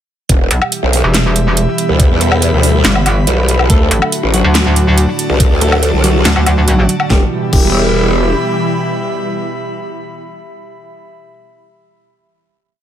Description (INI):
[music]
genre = heavy wobble dubstep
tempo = 141 BPM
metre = 4/4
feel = half-time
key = E minor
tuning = A4 = 443 Hz
[part]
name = supersaw pad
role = sustained chords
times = 0.3-10.9 s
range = A2 to G4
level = -19 LUFS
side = equal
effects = phaser, vintage 12-bit sampler grit, sidechain pumping, low-pass filter
[part]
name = growl bass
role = bass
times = 0.3-8.3 s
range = E1 to E2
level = -12 LUFS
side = equal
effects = chorus, overdrive
[part]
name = dubstep drum kit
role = drums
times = 0.3-7.7 s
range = crash cymbal, handclaps, hi-hat, snare drum, woodblock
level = -16 LUFS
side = equal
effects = none
[part]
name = electronic kick drum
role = drums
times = 0.3-7.7 s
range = none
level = -11 LUFS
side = equal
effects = none
[part]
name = airy breathy pad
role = texture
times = 0.3-11.0 s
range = F#4 to B5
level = -22 LUFS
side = equal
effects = chorus, sidechain pumping
[part]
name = metallic wobble bass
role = bass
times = 0.5-6.9 s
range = E1 to D2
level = -12 LUFS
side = equal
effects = chorus, overdrive
[part]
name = semi-hollow electric guitar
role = melody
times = 3.7-11.3 s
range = F#3 to A4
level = -19 LUFS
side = left 1 dB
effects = ping-pong delay
[sound]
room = digital ambience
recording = none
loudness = -10 LUFS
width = side -10 dB against mid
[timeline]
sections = 0.3-7.1 drop; 7.1-10.5 final chord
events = drop 0.3-7.1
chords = 0.3 Em; 3.7 D; 7.1 Em